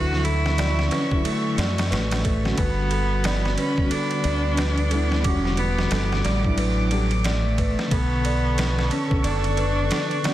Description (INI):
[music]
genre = trip hop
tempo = 90 BPM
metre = 4/4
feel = swing 60% on 16ths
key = B minor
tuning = A4 = 440 Hz
[part]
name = clear cello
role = melody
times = 0.0-10.3 s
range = F#3 to F#4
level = -26 LUFS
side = equal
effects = vintage 12-bit sampler grit, tape echo
[part]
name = mellow tine electric piano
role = accompaniment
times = 0.0-10.3 s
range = D3 to A4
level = -28 LUFS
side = equal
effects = fast stereo tremolo, vintage 12-bit sampler grit
[part]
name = dark chamber string section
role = sustained chords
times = 0.0-10.3 s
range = B3 to D6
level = -32 LUFS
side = equal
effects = none
[part]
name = celesta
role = arpeggios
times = 0.0-10.3 s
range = A4 to D6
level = -32 LUFS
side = right 4 dB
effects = tape echo
[part]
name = deep dub fingered electric bass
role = bass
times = 0.0-9.9 s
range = E1 to F#2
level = -24 LUFS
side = equal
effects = none
[part]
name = trip hop sampler-style drum kit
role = drums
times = 0.1-10.3 s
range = kick drum, ride cymbal, snare drum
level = -27 LUFS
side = equal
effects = overdrive, studio reverb
[sound]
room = small room ambience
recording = dense, heavily limited modern master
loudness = -20 LUFS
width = side -13 dB against mid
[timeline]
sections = 0.0-10.3 A section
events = none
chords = 0.0 Dmaj9; 2.6 Gmaj7; 5.2 Em9; 7.9 Bm9